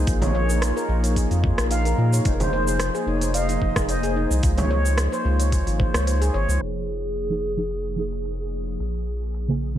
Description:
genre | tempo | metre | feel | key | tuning
organic downtempo | 110 BPM | 4/4 | swing 53% on 16ths | F minor | A4 = 439 Hz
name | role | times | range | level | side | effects
warm analog pad | sustained chords | 0.0-9.8 s | F3 to C6 | -30 LUFS | equal | chorus, sidechain pumping
round analog bass | bass | 0.0-9.8 s | F1 to Bb2 | -23 LUFS | equal | sidechain pumping
handpan | arpeggios | 0.1-6.6 s | Eb4 to F5 | -28 LUFS | right 1 dB | ping-pong delay
electronic kick drum | drums | 0.1-5.9 s | none | -24 LUFS | equal | overdrive
organic electronic drum kit | drums | 0.1-9.8 s | crash cymbal, hi-hat, rim click, shaker | -30 LUFS | equal | overdrive
frame drum | percussion | 0.2-4.7 s | none | -30 LUFS | right 2 dB | none
breathy low ney | melody | 2.3-8.5 s | Ab4 to Eb5 | -31 LUFS | equal | digital delay
deep mellow chord stab | accompaniment | 7.3-9.8 s | Db3 to Ab4 | -28 LUFS | right 3 dB | chorus, sidechain pumping
room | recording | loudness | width
little or no reverb | low-pass filter | -20 LUFS | side -11 dB against mid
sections
0.0-6.6 A section; 6.6-9.8 B section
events
kick drops out 6.1-6.6; filter sweep on synth stab 6.6-9.8; filter sweep 6.6-9.8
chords
0.1 Bbm7; 2.3 Fm7; 4.4 Dbmaj7; 6.6 Fm7; 8.8 Bbm7

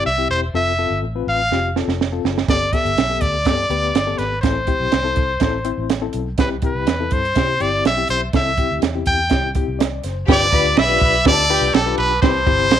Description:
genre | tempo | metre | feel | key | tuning
uptempo 1960s-style soul | 123 BPM | 4/4 | straight | G mixolydian | A4 = 440 Hz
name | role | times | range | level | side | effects
brilliant trumpet | melody | 0.0-12.8 s | A4 to G5 | -19 LUFS | equal | slapback echo
reed electric piano | accompaniment | 0.0-12.8 s | G2 to D5 | -24 LUFS | left 12 dB | fast tremolo
vintage muted fingered electric bass | bass | 0.1-12.8 s | E1 to C3 | -25 LUFS | equal | none
compact cocktail drum kit | drums | 1.5-12.8 s | crash cymbal, hi-hat, kick drum, ride cymbal, snare drum | -19 LUFS | right 4 dB | none
glockenspiel with hard plastic mallets | second line | 10.3-12.8 s | A5 to E6 | -28 LUFS | right 11 dB | none
warm studio violin section | second line | 10.3-11.7 s | G4 to B5 | -23 LUFS | left 1 dB | none
room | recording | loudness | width
light reverb | 1960s-style stereo with parts hard left and right | -16 LUFS | side -10 dB against mid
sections
0.0-10.3 A section; 10.3-12.8 B section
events
drum fill 1.5-2.5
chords
0.0 C; 0.5 F; 2.5 Gadd9; 4.4 Am; 6.4 C; 10.3 G7; 12.2 Cmaj7

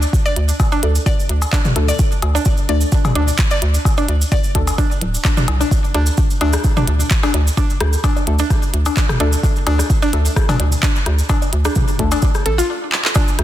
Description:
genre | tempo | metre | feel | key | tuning
minimal techno | 129 BPM | 4/4 | swing 54% on 16ths | unclear | A4 = 440 Hz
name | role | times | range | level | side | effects
hollow knocking FM bass | bass | 0.0-13.4 s | D1 to D2 | -16 LUFS | equal | sidechain pumping
cabasa | percussion | 0.0-13.4 s | none | -28 LUFS | right 3 dB | none
electronic kick drum | drums | 0.1-13.3 s | none | -17 LUFS | equal | none
mallet-like synth pluck | riff | 0.3-13.2 s | D4 to D5 | -22 LUFS | equal | chorus, sidechain pumping, tape echo
minimal click drum kit | drums | 0.4-13.4 s | handclaps, hi-hat | -22 LUFS | right 1 dB | none
techno drum kit | percussion | 0.6-13.4 s | cowbell, rim click, toms, woodblock | -24 LUFS | left 2 dB | soft clipping on snare, dub echo
filtered dub chord stab | stabs | 0.8-12.1 s | A3 to A4 | -27 LUFS | left 3 dB | phaser, dub echo
room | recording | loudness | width
light reverb | dense, heavily limited modern master | -14 LUFS | side -13 dB against mid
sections
0.0-13.2 A section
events
stop 12.7-13.2; drum fill 12.9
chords
0.0 D5

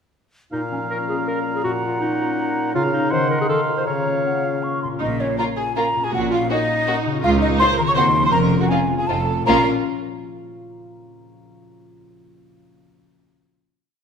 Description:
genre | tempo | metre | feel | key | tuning
cinematic, playful, whimsical film cue | 162 BPM | 3/4 | straight | Bb minor | A4 = 440 Hz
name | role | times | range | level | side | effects
clear oboe | second line | 0.5-4.8 s | F5 to Gb5 | -28 LUFS | right 4 dB | none
mellow clarinet | second line | 0.5-4.6 s | Db4 to Db5 | -24 LUFS | equal | none
mellow hollow silver concert flute | second line | 0.5-9.7 s | Db5 to Db6 | -23 LUFS | equal | none
warm bassoon | accompaniment | 0.5-4.8 s | Bb2 to Eb3 | -27 LUFS | right 1 dB | none
concert harp | arpeggios | 0.5-10.5 s | Bb2 to F5 | -25 LUFS | left 6 dB | none
rich symphonic viola section | accompaniment | 5.0-9.7 s | Db4 to Db5 | -25 LUFS | right 2 dB | none
rich studio cello section | bass | 5.0-9.7 s | Db2 to Bb2 | -24 LUFS | right 3 dB | none
rich studio double bass section | bass | 5.0-9.7 s | F1 to Eb2 | -27 LUFS | right 4 dB | none
warm studio violin section | melody | 5.4-9.7 s | F4 to Gb4 | -27 LUFS | left 1 dB | none
warm studio violin section | second line | 5.4-9.7 s | Bb3 to Eb4 | -28 LUFS | left 2 dB | none
room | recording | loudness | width
moderate scoring stage reverb, RT60 1.5 s | minimal, uncompressed stereo recording | -17 LUFS | side -6 dB against mid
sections
0.5-5.0 A section; 5.0-9.5 A section; 9.5-10.6 final chord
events
none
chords
0.5 Bbm; 1.6 Ebm7/Bb; 2.7 Bbm/Db; 3.1 Cdim/Eb; 3.5 F7/Eb; 3.9 Bbm/Db; 5.0 Bbm; 6.1 Ebm7/Bb; 7.2 Bbm/Db; 8.0 Cm7b5/Eb; 8.3 Bbm/F; 9.1 F7; 9.5 Bbm

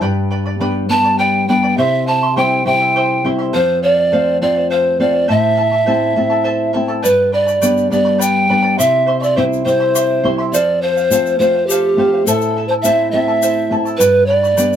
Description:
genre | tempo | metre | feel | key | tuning
andean folk, Andean ensemble | 69 BPM (dotted quarters) | 6/8 | straight | unclear | A4 = 440 Hz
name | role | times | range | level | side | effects
charango | accompaniment | 0.0-14.8 s | E4 to C6 | -22 LUFS | right 1 dB | none
flamenco guitar | accompaniment | 0.0-14.8 s | F2 to F4 | -18 LUFS | left 2 dB | none
breathy hollow pan flute | melody | 0.9-14.8 s | G4 to A5 | -14 LUFS | right 1 dB | none
tube shaker | percussion | 7.0-14.8 s | none | -23 LUFS | left 6 dB | none
room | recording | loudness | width
wet booth ambience, RT60 0.2 s | heard from further back in the room | -12 LUFS | side -9 dB against mid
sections
0.0-7.0 A section; 7.0-14.8 A section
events
none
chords
0.0 G; 1.8 C; 3.5 F; 5.3 Am; 7.0 G; 8.8 C; 10.5 F; 12.3 Am; 14.0 G

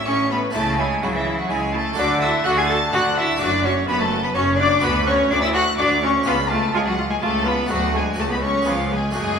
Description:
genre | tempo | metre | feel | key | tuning
classical, baroque-style concerto movement with solo episodes | 126 BPM | 3/4 | straight | unclear | A4 = 440 Hz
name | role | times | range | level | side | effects
rich chamber violin section | melody | 0.0-9.4 s | E5 to A6 | -25 LUFS | left 2 dB | none
rich chamber violin section | second line | 0.0-9.4 s | E4 to A5 | -24 LUFS | left 1 dB | none
harpsichord | accompaniment | 0.0-9.4 s | C#2 to A4 | -30 LUFS | equal | none
rich cello | melody | 0.1-9.4 s | E3 to A4 | -23 LUFS | equal | none
warm chamber viola section | accompaniment | 0.1-9.2 s | A3 to F#4 | -28 LUFS | right 1 dB | none
rich chamber double bass section | bass | 0.1-9.4 s | F#1 to D2 | -29 LUFS | right 3 dB | none
warm chamber cello section | bass | 0.1-9.4 s | C#2 to D3 | -26 LUFS | equal | none
room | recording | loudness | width
wet recital hall reverb, RT60 1.5 s | recorded in a church or concert hall | -17 LUFS | side -6 dB against mid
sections
0.0-9.4 A section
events
none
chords
0.0 A; 0.6 A/C#; 2.0 D; 3.4 Bm9/F#; 4.8 Bm/D; 6.3 C#; 7.7 D; 8.2 F#m/C#; 8.7 C#7

